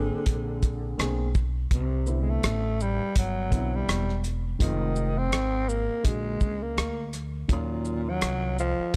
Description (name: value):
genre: hip hop, jazz-hop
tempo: 83 BPM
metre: 4/4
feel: swing 58% on 16ths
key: unclear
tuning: A4 = 440 Hz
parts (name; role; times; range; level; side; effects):
- growling tenor saxophone; melody; 0.0-9.0 s; Bb2 to C4; -33 LUFS; equal; none
- dark upright piano; accompaniment; 0.0-8.5 s; D3 to Ab4; -37 LUFS; equal; none
- upright bass; bass; 0.0-9.0 s; E1 to Eb2; -31 LUFS; equal; none
- cloth-damped thuddy drum kit; drums; 0.3-9.0 s; hi-hat, kick drum, rim click, shaker; -28 LUFS; equal; none
room: studio reverb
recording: none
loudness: -27 LUFS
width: mono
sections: 0.0-9.0 A section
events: none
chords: 0.3 Bb9; 1.7 Cmaj9; 4.6 Fm7; 6.0 Bb7alt; 7.5 Ebm9